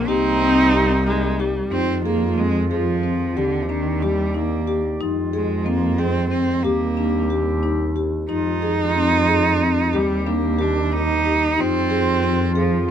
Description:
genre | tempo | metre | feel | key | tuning
contemporary instrumental, chamber music in an uneven meter | 183 BPM (eighths) | 5/8 | straight | F dorian | A4 = 442 Hz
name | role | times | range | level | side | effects
rich cello | melody | 0.0-12.9 s | D3 to Eb4 | -22 LUFS | right 4 dB | none
warm viola | second line | 0.0-1.7 s | G3 to C4 | -23 LUFS | right 1 dB | none
mellow woodwind section | sustained chords | 0.0-12.9 s | C3 to D5 | -30 LUFS | equal | none
marimba with soft mallets | arpeggios | 0.0-12.9 s | C4 to Ab4 | -22 LUFS | left 4 dB | none
muted double bass | bass | 0.0-12.9 s | C2 to F2 | -24 LUFS | right 2 dB | none
room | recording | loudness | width
little or no reverb | close, detailed microphones | -17 LUFS | side -9 dB against mid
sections
0.0-1.7 A section; 1.7-12.9 B section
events
none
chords
0.1 Cm7; 1.7 Fm7; 3.4 Ebmaj7; 5.0 Fm7; 6.6 Ebmaj7; 8.3 Fm7; 9.9 Ebmaj7; 11.6 Fm7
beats
| 0.08 0.41 0.73 1.06 1.39 | 1.72 2.05 2.38 2.70 3.03 | 3.36 3.69 4.02 4.35 4.67 | 5.00 5.33 5.66 5.99 6.32 | 6.65 6.97 7.30 7.63 7.96 | 8.29 8.62 8.95 9.28 9.60 | 9.93 10.26 10.59 10.92 11.25 | 11.57 11.90 12.23 12.56 12.89

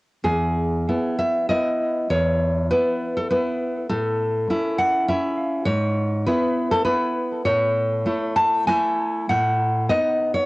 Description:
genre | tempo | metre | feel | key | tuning
romantic piece for solo classical guitar | 100 BPM | 3/4 | rubato | E major | A4 = 445 Hz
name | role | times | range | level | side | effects
nylon-string guitar | solo | 0.2-10.5 s | E2 to A5 | -19 LUFS | equal | cassette tape
room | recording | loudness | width
moderate spring reverb, RT60 1.3 s, small room reverb | home recording on cassette | -19 LUFS | side -21 dB against mid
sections
0.2-10.5 A section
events
none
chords
0.2 E; 3.9 A; 5.7 E/G#; 7.5 A; 9.3 B7/A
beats
| 0.24 0.87 1.50 | 2.11 2.73 3.32 | 3.91 4.50 5.09 | 5.67 6.27 6.86 | 7.46 8.07 8.68 | 9.30 9.90

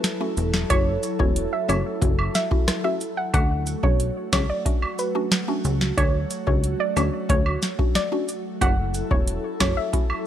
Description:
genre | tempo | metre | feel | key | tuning
dancehall | 91 BPM | 4/4 | straight | F# minor | A4 = 441 Hz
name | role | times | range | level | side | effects
airy breathy pad | sustained chords | 0.0-10.3 s | F#3 to A4 | -30 LUFS | equal | chorus, sidechain pumping
booming analog drum machine | drums | 0.0-10.1 s | hi-hat, kick drum, rim click, snare drum | -22 LUFS | equal | none
mallet-like synth pluck | accompaniment | 0.2-10.1 s | A3 to F#4 | -30 LUFS | left 2 dB | chorus, phaser, sidechain pumping
plucky analog bass | bass | 0.4-9.7 s | E1 to D2 | -25 LUFS | equal | none
cabasa and woodblock | percussion | 0.4-10.3 s | none | -31 LUFS | right 4 dB | none
soft round pluck | melody | 0.7-9.9 s | B4 to F#5 | -28 LUFS | right 1 dB | chorus, analog delay
room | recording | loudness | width
digital ambience | dry, gritty hardware recording | -20 LUFS | side -10 dB against mid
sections
0.0-10.3 A section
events
none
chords
0.0 F#m7; 3.3 Dmaj7; 8.6 F#m7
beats
0.04 | 0.70 1.36 2.02 2.68 | 3.34 4.00 4.66 5.32 | 5.98 6.64 7.30 7.96 | 8.62 9.27 9.93

